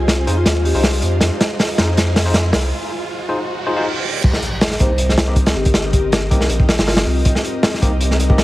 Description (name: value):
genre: drum and bass, jungle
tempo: 159 BPM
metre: 4/4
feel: straight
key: C minor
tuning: A4 = 440 Hz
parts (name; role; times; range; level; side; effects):
- ethereal airy pad; sustained chords; 0.0-8.4 s; Ab3 to Ab5; -27 LUFS; equal; ensemble chorus, built-in reverb
- saturated sub bass; bass; 0.0-8.4 s; G1 to F2; -18 LUFS; equal; none
- riser, reverse cymbal and impact; sound effects; 0.0-5.7 s; none; -26 LUFS; right 2 dB; none
- crunchy breakbeat drum kit; drums; 0.1-8.4 s; crash cymbal, hi-hat, kick drum, snare drum; -16 LUFS; equal; none
- overdriven tine electric piano; stabs; 0.3-8.4 s; Bb3 to C5; -25 LUFS; left 2 dB; dub echo
- marimba with medium mallets; melody; 0.4-1.0, 4.8-7.3 s; F4 to C5; -24 LUFS; left 2 dB; dub echo
room: light reverb, small room ambience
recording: heavily compressed radio sound, vinyl crackle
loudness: -14 LUFS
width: side -17 dB against mid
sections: 0.0-4.2 A section; 4.2-8.4 B section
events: build-up 0.0-4.2; drum fill 0.0-2.7; riser 0.0-4.2; break 2.7-4.2; reverse cymbal 3.5-4.2; drop 4.2-8.4; impact 4.2-5.7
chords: 0.0 Fm7; 4.2 Cm7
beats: 0.08 0.46 0.84 | 1.22 1.59 1.97 2.35 | 2.73 3.10 3.48 3.86 | 4.24 4.61 4.99 5.37 | 5.74 6.12 6.50 6.88 | 7.25 7.63 8.01 8.38